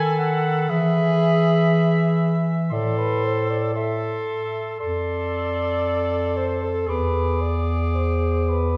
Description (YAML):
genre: classical, lyrical piece for single-reed quartet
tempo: 54-60 BPM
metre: 4/4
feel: rubato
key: unclear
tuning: A4 = 441 Hz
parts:
  - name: warm clarinet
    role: melody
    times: 0.0-8.8 s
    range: B5 to D6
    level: -36 LUFS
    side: equal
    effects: none
  - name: mellow alto saxophone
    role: second line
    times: 0.0-8.8 s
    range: A4 to G#5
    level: -28 LUFS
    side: equal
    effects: none
  - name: clear tenor saxophone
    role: accompaniment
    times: 0.0-8.8 s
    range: G#4 to A4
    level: -29 LUFS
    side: equal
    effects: none
  - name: warm bass clarinet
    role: bass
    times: 0.0-8.8 s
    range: E2 to E3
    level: -25 LUFS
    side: equal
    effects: none
room: wet recital hall reverb, RT60 1.4 s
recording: heard from further back in the room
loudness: -22 LUFS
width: mono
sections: 0.0-8.8 A section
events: none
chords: 0.0 B7/D#; 0.7 E; 2.7 Am; 4.8 F; 6.9 E7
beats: | 0.69 1.71 2.71 3.74 | 4.79 5.83 6.88 7.94